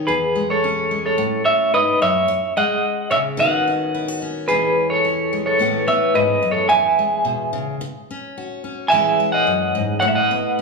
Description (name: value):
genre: highlife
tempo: 109 BPM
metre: 4/4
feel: swing 55% on 16ths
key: E major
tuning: A4 = 440 Hz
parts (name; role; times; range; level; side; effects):
- picked steel-string acoustic guitar; accompaniment; 0.0-10.6 s; E2 to G#4; -23 LUFS; left 2 dB; none
- clean electric guitar; melody; 0.1-10.6 s; G#4 to G#5; -17 LUFS; right 1 dB; tremolo
room: wet large studio reverb, RT60 1.2 s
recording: band playing live in one room, small room ambience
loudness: -16 LUFS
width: side -3 dB against mid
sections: 0.0-10.6 A section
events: none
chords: 0.1 E6; 1.2 Aadd9; 2.3 E6; 3.4 Badd9/D#; 4.5 E6; 5.6 Aadd9; 6.7 E6; 7.8 D#m7 (rootless); 8.9 E6; 10.0 Aadd9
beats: | 0.08 0.63 1.18 1.73 | 2.28 2.83 3.38 3.93 | 4.48 5.03 5.58 6.14 | 6.69 7.24 7.79 8.34 | 8.90 9.45 10.00 10.55